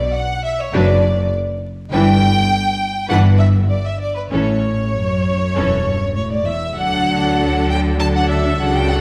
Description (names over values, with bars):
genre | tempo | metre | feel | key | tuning
quick classical-period movement for string orchestra | 99 BPM | 4/4 | rubato | D major | A4 = 439 Hz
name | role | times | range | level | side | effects
clear studio violin section | second line | 0.0-9.0 s | B4 to A5 | -22 LUFS | equal | none
clear chamber double bass section | bass | 0.0-9.0 s | E1 to D2 | -22 LUFS | equal | none
rich studio cello section | bass | 0.0-9.0 s | E2 to D3 | -23 LUFS | equal | none
rich studio violin section | melody | 0.7-9.0 s | A4 to B4 | -32 LUFS | equal | none
rich studio viola section | accompaniment | 0.7-9.0 s | E3 to D4 | -24 LUFS | equal | none
room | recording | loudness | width
moderate scoring stage reverb, RT60 1.6 s | vinyl crackle | -17 LUFS | mono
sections
0.0-9.0 A section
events
none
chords
0.0 Bm (rootless); 1.9 Em7/G; 4.3 A; 6.8 D